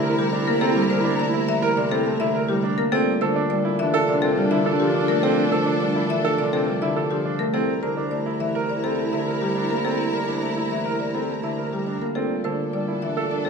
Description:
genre	classical, minimalist pattern music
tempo	104 BPM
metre	4/4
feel	straight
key	unclear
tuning	A4 = 440 Hz
part	marimba with medium hard mallets	melody	0.0-13.5 s	G4 to E5	-27 LUFS	left 6 dB	none
part	Celtic harp	accompaniment	0.0-13.5 s	C3 to Bb3	-26 LUFS	equal	none
part	rich symphonic string section	sustained chords	0.0-13.5 s	D4 to Bb5	-31 LUFS	left 1 dB	none
part	clear grand piano	arpeggios	0.0-13.5 s	C4 to Bb4	-26 LUFS	right 6 dB	none
part	mellow bassoon	bass	0.0-13.5 s	C2 to Bb2	-28 LUFS	right 1 dB	none
part	mellow clarinet	second line	0.1-13.5 s	D4 to E4	-30 LUFS	equal	none
room	wet recital hall reverb, RT60 1.4 s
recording	minimal, uncompressed stereo recording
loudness	-20 LUFS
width	side -5 dB against mid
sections	0.0-13.5 A section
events	none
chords	0.0 C9; 2.9 Bbmaj9#11; 7.5 C9; 12.2 Bbmaj9#11

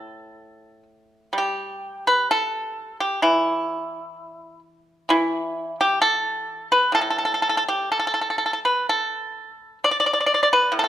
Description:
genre	chinese traditional, Chinese solo plucked strings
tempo	64 BPM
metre	2/4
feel	rubato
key	A shang mode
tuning	A4 = 442 Hz
part	pipa	solo	0.0-10.9 s	A2 to D5	-20 LUFS	equal	none
room	light reverb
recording	minimal, uncompressed stereo recording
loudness	-19 LUFS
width	side -11 dB against mid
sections	0.0-1.3 A section; 1.3-10.9 B section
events	none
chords	none

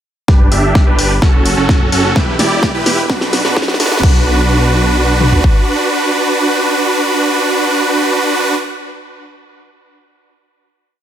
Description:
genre	EDM, festival progressive house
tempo	128 BPM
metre	4/4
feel	straight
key	B minor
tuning	A4 = 439 Hz
part	supersaw chords	riff	0.3-8.5 s	C#4 to E5	-13 LUFS	right 1 dB	sidechain pumping, low-pass filter, tape echo
part	detuned saw bass	bass	0.3-5.4 s	E1 to B1	-17 LUFS	equal	sidechain pumping
part	big-room dance drum kit	drums	0.3-5.5 s	kick drum, toms	-11 LUFS	equal	none
part	big-room dance drum kit	drums	0.3-4.1 s	crash cymbal, hi-hat, snare drum	-18 LUFS	equal	none
room	light reverb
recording	high-pass filter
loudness	-10 LUFS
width	side -10 dB against mid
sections	0.3-4.0 build; 4.0-7.8 final chord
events	build-up 0.3-4.0; drum fill 0.3-4.0; filter sweep on supersaw synth 0.3-4.0; filter sweep 0.3-4.0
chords	0.3 G; 1.2 F#m; 2.2 Em; 3.1 Bm

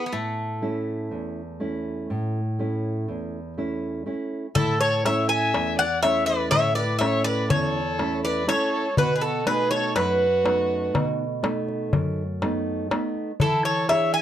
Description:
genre	greek folk, Greek bouzouki band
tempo	122 BPM (eighths)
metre	9/8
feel	straight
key	A major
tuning	A4 = 439 Hz
part	Greek bouzouki	melody	0.0-14.2 s	A3 to G#5	-23 LUFS	equal	plate reverb
part	nylon-string guitar	accompaniment	0.0-14.2 s	E2 to G#4	-27 LUFS	right 2 dB	none
part	rich violin	second line	4.6-14.2 s	E4 to E5	-29 LUFS	left 3 dB	none
part	darbuka	percussion	4.6-14.1 s	none	-26 LUFS	left 3 dB	none
room	wet small room reverb, RT60 0.5 s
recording	none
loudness	-22 LUFS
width	side -11 dB against mid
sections	0.0-4.6 A section; 4.6-14.2 B section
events	none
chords	0.1 A; 9.0 B7; 13.4 E7

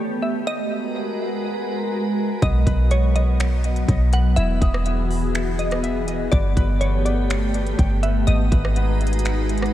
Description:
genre	hip hop, atmospheric cloud-rap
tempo	123 BPM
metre	4/4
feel	half-time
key	unclear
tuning	A4 = 440 Hz
part	glassy wavetable pluck	melody	0.0-9.2 s	C#5 to F#5	-29 LUFS	equal	chorus, diffuse ambient delay
part	glassy FM pad	sustained chords	0.0-9.7 s	E3 to A#5	-25 LUFS	equal	ensemble chorus, built-in reverb, sidechain pumping
part	concert harp	arpeggios	2.4-9.7 s	B3 to D#6	-34 LUFS	left 3 dB	diffuse ambient delay
part	clean 808-style bass	bass	2.4-9.7 s	E1 to B1	-20 LUFS	equal	none
part	trap drum kit	drums	2.4-9.7 s	finger snaps, hi-hat, kick drum, rim click	-24 LUFS	equal	vintage 12-bit sampler grit
room	light reverb, digital ambience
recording	none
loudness	-18 LUFS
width	side -13 dB against mid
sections	0.0-9.7 A section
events	none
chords	0.5 G#m7; 2.4 B; 4.4 Emaj7; 6.3 Gadd9; 8.3 G#m7

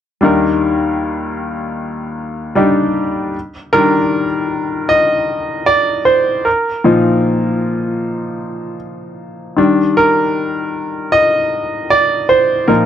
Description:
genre	pop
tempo	77 BPM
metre	4/4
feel	straight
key	Eb major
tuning	A4 = 436 Hz
part	bright grand piano	accompaniment	0.2-12.9 s	Eb2 to Eb5	-13 LUFS	equal	none
room	light reverb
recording	dry, close 1970s-style studio recording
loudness	-13 LUFS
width	side -9 dB against mid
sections	0.2-3.3 A section; 3.3-12.9 B section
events	grand piano solo 3.3-12.9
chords	0.2 Ebmaj7; 6.5 Bbsus4; 9.6 Ebmaj7

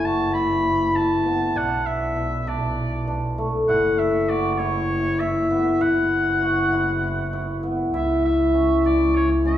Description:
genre	contemporary instrumental, chamber music in an uneven meter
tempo	198 BPM (eighths)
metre	7/8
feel	straight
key	F# minor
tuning	A4 = 440 Hz
part	clear oboe	melody	0.0-9.6 s	C#5 to B5	-25 LUFS	right 1 dB	none
part	cimbalom	arpeggios	0.0-9.6 s	A3 to F#4	-21 LUFS	left 1 dB	none
part	warm double bass	bass	0.0-9.6 s	F#1 to C#2	-27 LUFS	right 2 dB	none
room	wet recital hall reverb, RT60 1.6 s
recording	recorded in a church or concert hall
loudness	-19 LUFS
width	side -12 dB against mid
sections	0.0-7.9 A section; 7.9-9.6 B section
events	none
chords	0.0 F#m7; 1.6 Bm7; 3.7 F#7sus4; 7.9 C#m7

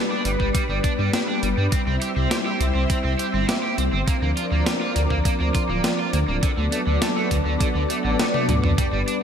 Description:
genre	synthwave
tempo	102 BPM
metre	4/4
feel	straight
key	unclear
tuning	A4 = 439 Hz
part	analog string pad	sustained chords	0.0-9.2 s	F3 to E5	-24 LUFS	left 1 dB	ensemble chorus, sidechain pumping
part	overdriven semi-hollow guitar	riff	0.1-9.1 s	D3 to G4	-28 LUFS	right 4 dB	wide subtle chorus, digital delay
part	dark detuned saw bass	bass	0.3-9.0 s	D1 to G2	-23 LUFS	equal	none
part	clean 12-bit digital drum machine	drums	0.3-9.2 s	hi-hat, snare drum, toms	-26 LUFS	equal	gated reverb
part	electronic kick drum	drums	0.4-8.9 s	none	-23 LUFS	equal	none
room	moderate lush hall reverb, RT60 1.6 s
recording	bright 1980s-style digital production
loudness	-19 LUFS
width	side -8 dB against mid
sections	0.0-9.2 A section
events	drum fill 8.3-8.8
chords	0.0 G; 1.7 C; 4.1 Bbadd9/D; 6.4 D6

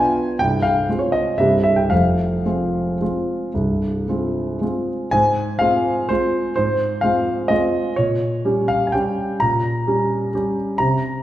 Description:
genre	classical, piano waltz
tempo	107-135 BPM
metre	3/4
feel	rubato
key	F minor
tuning	A4 = 440 Hz
part	warm concert grand piano	solo	0.0-11.2 s	C1 to Bb5	-17 LUFS	equal	none
room	wet recital hall reverb, RT60 1.7 s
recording	heard from further back in the room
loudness	-17 LUFS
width	side -13 dB against mid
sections	0.0-5.1 A section; 5.1-11.2 B section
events	none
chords	0.4 Fm/C; 1.4 C; 1.9 Fm; 5.1 Fm/Ab; 8.0 Gdim/Bb

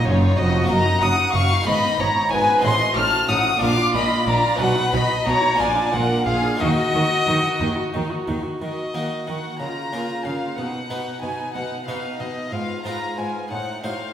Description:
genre	classical, baroque-style concerto movement with solo episodes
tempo	61 BPM (dotted quarters)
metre	6/8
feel	straight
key	Eb minor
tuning	A4 = 443 Hz
part	warm chamber violin section	melody	0.0-14.1 s	Bb4 to F6	-26 LUFS	left 1 dB	none
part	warm violin	melody	0.0-14.1 s	C#5 to F6	-25 LUFS	left 1 dB	none
part	rich chamber violin section	second line	0.0-14.1 s	E#4 to Bb5	-26 LUFS	left 2 dB	none
part	harpsichord	accompaniment	0.0-14.1 s	E#2 to C5	-28 LUFS	equal	none
part	warm chamber viola section	accompaniment	0.0-14.1 s	Cb4 to Gb4	-30 LUFS	right 1 dB	none
part	rich chamber cello section	bass	0.0-13.9 s	E#2 to Eb3	-26 LUFS	right 1 dB	none
part	rich chamber double bass section	bass	0.0-8.4 s	E#1 to Eb2	-26 LUFS	right 2 dB	none
room	wet recital hall reverb, RT60 1.4 s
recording	recorded in a church or concert hall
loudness	-18 LUFS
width	side -10 dB against mid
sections	0.0-8.6 A section; 8.6-14.1 B section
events	none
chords	0.0 D#m; 0.7 Ebm/Gb; 1.7 Abm; 2.6 Adim7; 3.6 Bb; 4.6 B; 5.6 Bb; 6.6 Ebm; 9.6 Bbm/Db; 10.6 B; 12.5 Fdim/Ab; 13.5 Adim7

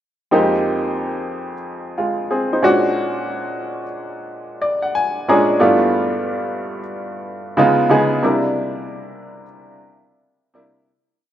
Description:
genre	R&B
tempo	91 BPM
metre	4/4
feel	swing 63% on 16ths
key	unclear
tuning	A4 = 441 Hz
part	clear baby grand piano	solo	0.3-10.9 s	F2 to Bb5	-17 LUFS	equal	none
room	moderate lush hall reverb, RT60 2.7 s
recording	rough home demo mix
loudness	-16 LUFS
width	side -11 dB against mid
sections	0.3-10.9 verse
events	grand piano fill 4.3-5.6; fade-out 8.2-10.9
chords	0.3 Fm11; 2.6 Bb7alt; 5.6 G13; 7.6 Db9; 8.2 C9

